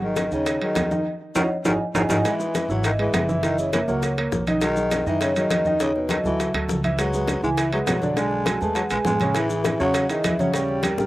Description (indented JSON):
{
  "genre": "Afro-Cuban jazz",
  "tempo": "203 BPM",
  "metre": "4/4",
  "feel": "straight",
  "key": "unclear",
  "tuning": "A4 = 439 Hz",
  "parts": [
    { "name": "vibraphone with soft mallets", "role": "melody", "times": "0.0-11.1 s", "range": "B4 to A5", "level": "-26 LUFS", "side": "equal", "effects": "slapback echo" },
    { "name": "growling baritone saxophone", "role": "second line", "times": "0.0-11.1 s", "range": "B2 to A3", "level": "-28 LUFS", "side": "left 2 dB", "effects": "slapback echo" },
    { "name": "dark grand piano", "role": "accompaniment", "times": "0.0-11.1 s", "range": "C#3 to E5", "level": "-25 LUFS", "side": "right 2 dB", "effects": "slapback echo" },
    { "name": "upright bass", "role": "bass", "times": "0.0-11.1 s", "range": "F#1 to F#2", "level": "-30 LUFS", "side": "equal", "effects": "none" },
    { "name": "congas", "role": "percussion", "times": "0.0-11.1 s", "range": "none", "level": "-29 LUFS", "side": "equal", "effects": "none" },
    { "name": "bongos", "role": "percussion", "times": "0.2-11.0 s", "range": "none", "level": "-30 LUFS", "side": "left 5 dB", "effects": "slapback echo" },
    { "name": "maracas", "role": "percussion", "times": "0.2-11.1 s", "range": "none", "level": "-39 LUFS", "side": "left 2 dB", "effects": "none" },
    { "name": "timbales", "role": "percussion", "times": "0.2-11.0 s", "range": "none", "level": "-29 LUFS", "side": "right 3 dB", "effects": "slapback echo" }
  ],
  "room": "little or no reverb",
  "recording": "recorded outdoors, with no room sound",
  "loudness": "-20 LUFS",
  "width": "side -16 dB against mid",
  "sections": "0.0-2.2 A section; 2.2-11.1 B section",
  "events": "drum fill 1.1-2.2; band accent 1.1-2.2",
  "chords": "0.0 G#5; 1.1 D#m7; 1.7 G#5; 2.2 F#9sus4; 3.4 F#7; 4.6 B6; 5.8 D#dim; 6.4 Dadd9; 7.0 C#m7; 8.2 Bm7; 8.8 E; 9.4 Amaj7; 10.5 D#7"
}